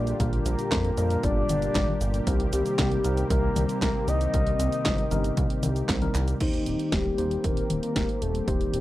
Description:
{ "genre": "italo disco", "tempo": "116 BPM", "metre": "4/4", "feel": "straight", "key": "unclear", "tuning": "A4 = 440 Hz", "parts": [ { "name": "soft octave-layered synth lead", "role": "melody", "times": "0.0-8.8 s", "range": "Eb4 to Eb5", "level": "-30 LUFS", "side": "left 2 dB", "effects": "chorus, tremolo, tape echo" }, { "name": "warm analog pad", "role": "sustained chords", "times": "0.0-8.8 s", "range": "D3 to G4", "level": "-34 LUFS", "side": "equal", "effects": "chorus" }, { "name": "mellow tine electric piano", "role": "stabs", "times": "0.0-8.8 s", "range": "Bb2 to C5", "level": "-31 LUFS", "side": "left 1 dB", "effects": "medium stereo tremolo, low-pass filter" }, { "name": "chorused synth bass", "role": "bass", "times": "0.0-8.8 s", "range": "Eb1 to F2", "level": "-28 LUFS", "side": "equal", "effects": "none" }, { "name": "house drum kit", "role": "drums", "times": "0.1-8.8 s", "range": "cabasa, crash cymbal, handclaps, hi-hat, snare drum, toms", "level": "-31 LUFS", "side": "equal", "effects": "none" }, { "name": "electronic kick drum", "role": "drums", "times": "0.2-8.6 s", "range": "none", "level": "-29 LUFS", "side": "equal", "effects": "none" } ], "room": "little or no reverb", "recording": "dry, close 1970s-style studio recording", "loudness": "-23 LUFS", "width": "side -15 dB against mid", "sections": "0.0-6.4 A section; 6.4-8.8 B section", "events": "drum fill 6.1; filter sweep on tine electric piano 6.4-8.8", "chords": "0.0 Bb6; 2.3 Cm7; 6.4 Eb6" }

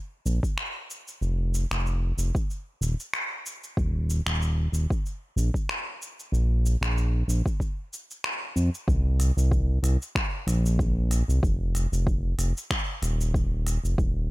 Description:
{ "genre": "organic downtempo", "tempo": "94 BPM", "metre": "4/4", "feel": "swing 55% on 16ths", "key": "unclear", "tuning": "A4 = 440 Hz", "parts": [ { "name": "smooth gliding synth bass", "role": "bass", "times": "0.3-14.3 s", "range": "Eb1 to F2", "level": "-24 LUFS", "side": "equal", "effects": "sidechain pumping" }, { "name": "organic electronic drum kit", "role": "drums", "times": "0.3-14.1 s", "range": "finger snaps, hi-hat, shaker", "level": "-33 LUFS", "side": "equal", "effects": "overdrive" }, { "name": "electronic kick drum", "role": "drums", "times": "0.4-14.1 s", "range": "none", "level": "-26 LUFS", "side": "equal", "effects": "overdrive" } ], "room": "little or no reverb", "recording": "none", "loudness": "-24 LUFS", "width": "side -19 dB against mid", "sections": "0.0-8.9 A section; 8.9-14.3 B section", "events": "none", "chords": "none" }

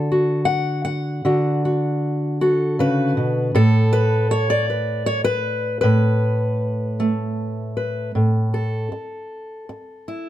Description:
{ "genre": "folk, solo fingerstyle acoustic guitar", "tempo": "78 BPM", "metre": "3/4", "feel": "straight", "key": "unclear", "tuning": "A4 = 440 Hz", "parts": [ { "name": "fingerpicked steel-string acoustic guitar", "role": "solo", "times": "0.0-10.3 s", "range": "A2 to F#5", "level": "-18 LUFS", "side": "equal", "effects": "none" } ], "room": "light reverb", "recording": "none", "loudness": "-18 LUFS", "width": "side -12 dB against mid", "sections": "0.0-8.1 A section; 8.1-10.3 B section", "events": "none", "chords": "0.0 D; 3.5 Asus2; 8.1 A5" }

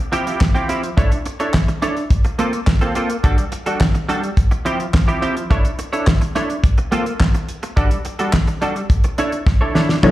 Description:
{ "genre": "early-eighties boogie funk", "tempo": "106 BPM", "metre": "4/4", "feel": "straight", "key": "unclear", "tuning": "A4 = 441 Hz", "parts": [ { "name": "semi-hollow electric guitar", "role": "riff", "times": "0.1-10.1 s", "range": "F3 to C#5", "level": "-21 LUFS", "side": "right 1 dB", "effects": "analog chorus, slapback echo" }, { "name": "damped 70s drum kit", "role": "drums", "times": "0.1-10.1 s", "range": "handclaps, hi-hat, kick drum, snare drum", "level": "-17 LUFS", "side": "equal", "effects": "slapback echo" }, { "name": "mellow FM electric piano", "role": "accompaniment", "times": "10.0-10.1 s", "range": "D4 to C#5", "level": "-13 LUFS", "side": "left 4 dB", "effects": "chorus" }, { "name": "gritty slap bass", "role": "bass", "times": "10.0-10.1 s", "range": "B1", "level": "-11 LUFS", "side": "equal", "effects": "overdrive" } ], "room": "light reverb, studio reverb", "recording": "live gig heard through the venue's PA, club reverb", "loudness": "-16 LUFS", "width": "side -15 dB against mid", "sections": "0.0-10.0 A section", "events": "drum fill 9.5-10.0", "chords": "0.0 Cadd11/F; 1.0 Aadd11/D; 2.1 Fadd11/Bb; 3.2 Dadd11/G; 4.4 Cadd11/F; 5.5 Aadd11/D; 6.6 Fadd11/Bb; 7.8 Dadd11/G; 8.9 Aadd11/D" }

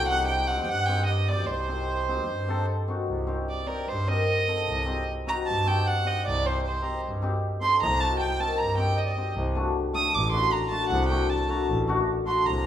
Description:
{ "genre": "klezmer", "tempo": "153 BPM", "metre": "4/4", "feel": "straight", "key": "C dorian sharp4", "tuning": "A4 = 440 Hz", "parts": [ { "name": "warm violin", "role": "melody", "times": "0.0-12.7 s", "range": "Bb4 to Eb6", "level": "-28 LUFS", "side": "right 2 dB", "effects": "none" }, { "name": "accordion", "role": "second line", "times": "0.0-12.7 s", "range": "C5 to Eb6", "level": "-33 LUFS", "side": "right 4 dB", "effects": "none" }, { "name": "clear double bass", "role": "bass", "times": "0.0-12.7 s", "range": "A1 to G2", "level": "-28 LUFS", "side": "equal", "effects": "none" }, { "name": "cimbalom", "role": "accompaniment", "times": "0.1-12.4 s", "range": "A3 to Bb4", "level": "-30 LUFS", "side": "left 3 dB", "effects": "none" } ], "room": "moderate recital hall reverb, RT60 1.4 s", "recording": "minimal, uncompressed stereo recording", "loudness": "-24 LUFS", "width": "side -10 dB against mid", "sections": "0.0-3.1 A section; 3.1-12.7 B section", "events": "speeding up 0.0-12.7; violin solo 3.1-12.7", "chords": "0.0 Cm; 9.4 D" }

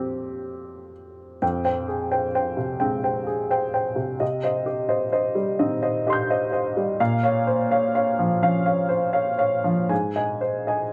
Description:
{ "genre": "neoclassical minimalist piano", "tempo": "42 BPM (dotted quarters)", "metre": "6/8", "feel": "uneven beats, rubato", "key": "unclear", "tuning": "A4 = 440 Hz", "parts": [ { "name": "clear upright piano", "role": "solo", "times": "0.0-10.9 s", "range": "F2 to G6", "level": "-24 LUFS", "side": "equal", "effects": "none" } ], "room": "moderate studio reverb, RT60 0.5 s", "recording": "none", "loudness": "-23 LUFS", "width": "mono", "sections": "0.0-1.4 A section; 1.4-10.9 B section", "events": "none", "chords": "0.0 Fadd9; 1.4 Fmadd9; 4.2 Cm; 7.0 Bbmadd9; 9.9 Ab" }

